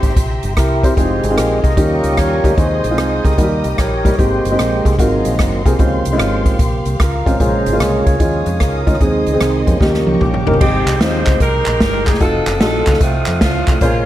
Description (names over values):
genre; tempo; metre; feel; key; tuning
uptempo gospel; 149 BPM; 4/4; swing 66% on 8ths; Ab major; A4 = 439 Hz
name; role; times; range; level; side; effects
warm upright piano; accompaniment; 0.0-14.1 s; Ab2 to C5; -19 LUFS; left 1 dB; none
rich studio string section; sustained chords; 0.0-10.6 s; Eb5 to Eb6; -29 LUFS; left 2 dB; none
tonewheel organ; sustained chords; 0.0-14.1 s; Db3 to Eb6; -19 LUFS; right 1 dB; slow rotary speaker
fingered electric bass; bass; 0.0-14.0 s; F1 to F2; -20 LUFS; equal; none
swinging big-band drum kit; drums; 0.0-13.9 s; crash cymbal, hi-hat, kick drum, rim click, snare drum, toms; -16 LUFS; equal; none
mellow saxophone section; melody; 10.2-14.1 s; Ab3 to C5; -18 LUFS; equal; none
group handclap; percussion; 10.9-13.7 s; none; -24 LUFS; right 2 dB; none
room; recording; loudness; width
light reverb; none; -12 LUFS; side -13 dB against mid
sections
0.0-10.6 A section; 10.6-14.1 B section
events
tonewheel organ solo 0.0-10.6; drum fill 9.8-10.6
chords
0.0 C7; 1.0 Fm7; 1.8 Eb7; 2.6 Ab; 3.4 Eb; 4.2 Abmaj7; 5.0 Ab13; 5.8 Dbmaj7; 7.4 Bbm7; 8.2 Eb9sus4; 9.0 Ab; 9.8 Eb7; 10.6 Abmaj7; 12.2 F7b9